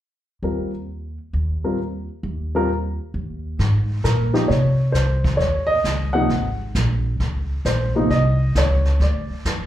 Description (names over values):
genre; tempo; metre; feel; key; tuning
jazz piano trio; 133 BPM; 4/4; swing 66% on 8ths; Ab major; A4 = 440 Hz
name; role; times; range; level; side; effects
dark baby grand piano; melody; 0.4-9.7 s; C3 to Gb5; -22 LUFS; equal; slapback echo
upright bass; bass; 0.4-9.7 s; Ab1 to C3; -21 LUFS; equal; none
jazz brush drum kit; drums; 3.6-9.7 s; brushed snare drum, hi-hat, kick drum, snare drum; -27 LUFS; equal; slapback echo
room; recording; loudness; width
light reverb; live gig heard through the venue's PA, club reverb; -18 LUFS; side -12 dB against mid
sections
0.0-3.6 A section; 3.6-9.7 B section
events
none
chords
0.0 N.C.; 3.6 Abadd9; 5.4 Eb5; 6.3 Absus2; 7.2 Dbmaj7sus2; 9.0 Dm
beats
0.43 0.88 1.33 | 1.79 2.24 2.69 3.14 | 3.59 4.04 4.49 4.94 | 5.39 5.85 6.30 6.75 | 7.20 7.65 8.10 8.55 | 9.00 9.45